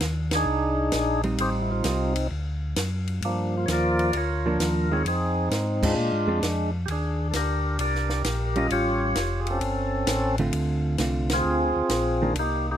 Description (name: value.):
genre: soul jazz organ trio.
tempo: 131 BPM.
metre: 4/4.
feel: swing 68% on 8ths.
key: unclear.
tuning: A4 = 440 Hz.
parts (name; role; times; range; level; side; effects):
mellow tonewheel organ; bass; 0.0-12.8 s; E#1 to Bb2; -27 LUFS; equal; slow rotary speaker.
compact cocktail drum kit; drums; 0.0-12.5 s; crash cymbal, hi-hat, kick drum, ride cymbal, snare drum; -32 LUFS; equal; none.
percussive tonewheel organ; melody; 0.4-12.8 s; F3 to Eb5; -25 LUFS; equal; slow rotary speaker.
hollow-body jazz guitar; accompaniment; 1.2-12.4 s; D3 to F4; -27 LUFS; right 2 dB; none.
room: light reverb.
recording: close, detailed microphones.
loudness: -22 LUFS.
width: side -10 dB against mid.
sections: 0.0-12.8 A section.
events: band accent 0.2, 5.7, 11.2.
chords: 0.0 Cm9; 1.4 Am7b5; 2.3 D; 3.2 Gm7; 5.1 Fm7; 6.0 Bb9; 6.9 Ebmaj7; 8.7 A7alt; 10.5 Dm7.